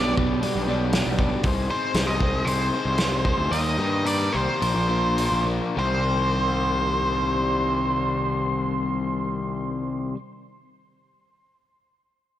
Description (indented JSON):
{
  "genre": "indie rock",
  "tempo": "100-118 BPM",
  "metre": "4/4",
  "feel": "straight",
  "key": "C minor",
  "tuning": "A4 = 441 Hz",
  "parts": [
    { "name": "octave-fuzz lead guitar", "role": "melody", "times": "0.0-10.1 s", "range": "C5 to Eb5", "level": "-26 LUFS", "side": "right 1 dB", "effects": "distortion" },
    { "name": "overdriven electric guitar", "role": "riff", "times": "0.0-10.2 s", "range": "Bb2 to D5", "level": "-27 LUFS", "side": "left 4 dB", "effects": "none" },
    { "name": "twelve-string electric guitar", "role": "riff", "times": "0.0-1.4 s", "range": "B2 to D4", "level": "-28 LUFS", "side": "right 7 dB", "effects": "ensemble chorus, tape echo" },
    { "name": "fuzz picked electric bass", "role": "bass", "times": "0.0-10.1 s", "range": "Bb1 to G2", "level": "-26 LUFS", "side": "equal", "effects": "overdrive" },
    { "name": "loose indie drum kit", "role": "drums", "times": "0.2-5.3 s", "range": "hi-hat, kick drum, snare drum", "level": "-27 LUFS", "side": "equal", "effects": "none" }
  ],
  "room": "moderate lush hall reverb, RT60 1.8 s, studio ambience",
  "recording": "big arena sound",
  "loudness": "-21 LUFS",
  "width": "side -12 dB against mid",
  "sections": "0.0-5.8 A section; 5.8-10.6 B section",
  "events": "slowing down 1.4-5.8",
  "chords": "0.0 G/B; 1.4 Ab/C; 3.5 Eb; 4.6 Bbadd9; 5.8 Cm"
}